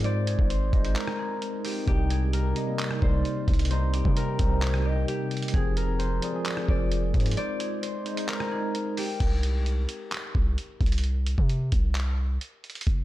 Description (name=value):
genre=hip hop, trap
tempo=131 BPM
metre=4/4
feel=half-time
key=unclear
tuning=A4 = 440 Hz
part: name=concert harp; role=melody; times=0.0-11.3 s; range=G4 to D5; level=-34 LUFS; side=left 3 dB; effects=digital delay
part: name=tine electric piano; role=accompaniment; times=0.0-9.2 s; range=C3 to C5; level=-31 LUFS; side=equal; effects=medium stereo tremolo
part: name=glassy FM pad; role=sustained chords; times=0.0-9.2 s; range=C3 to G4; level=-38 LUFS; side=right 1 dB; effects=ensemble chorus, built-in reverb
part: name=long sustained 808-style bass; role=bass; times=0.0-13.0 s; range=F1 to C3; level=-26 LUFS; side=equal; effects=none
part: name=lo-fi sampler-style drum kit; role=drums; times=0.0-13.0 s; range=crash cymbal, handclaps, hi-hat, kick drum, rim click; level=-27 LUFS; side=equal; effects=none
part: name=gliding portamento lead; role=second line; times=0.7-8.3 s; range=C5 to Eb5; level=-41 LUFS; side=right 4 dB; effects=chorus, digital delay
room=little or no reverb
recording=none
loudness=-24 LUFS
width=side -15 dB against mid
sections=0.0-9.2 A section; 9.2-13.0 B section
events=break 1.0-1.9, 7.4-9.2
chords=0.0 Ab; 1.9 Cm; 5.5 Fm; 7.4 Ab; 9.2 N.C.